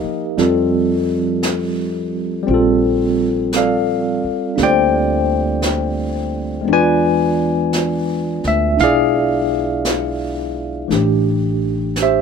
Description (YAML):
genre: jazz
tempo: 57 BPM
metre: 4/4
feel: swing 67% on 8ths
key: unclear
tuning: A4 = 442 Hz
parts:
  - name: barky tine electric piano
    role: accompaniment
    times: 0.0-12.2 s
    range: E3 to G#5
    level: -16 LUFS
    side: left 1 dB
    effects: slow stereo tremolo
  - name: upright bass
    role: bass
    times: 0.0-12.2 s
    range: A1 to F2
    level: -22 LUFS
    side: right 1 dB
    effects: none
  - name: jazz brush drum kit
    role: drums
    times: 0.4-12.2 s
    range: brushed snare drum, hi-hat, snare drum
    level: -26 LUFS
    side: right 2 dB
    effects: none
room: light reverb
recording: band playing live in one room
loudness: -15 LUFS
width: side -6 dB against mid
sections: 0.0-12.2 A section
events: none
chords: 0.4 Fadd9; 2.5 Bbmaj9; 6.7 E7b9; 10.9 Am7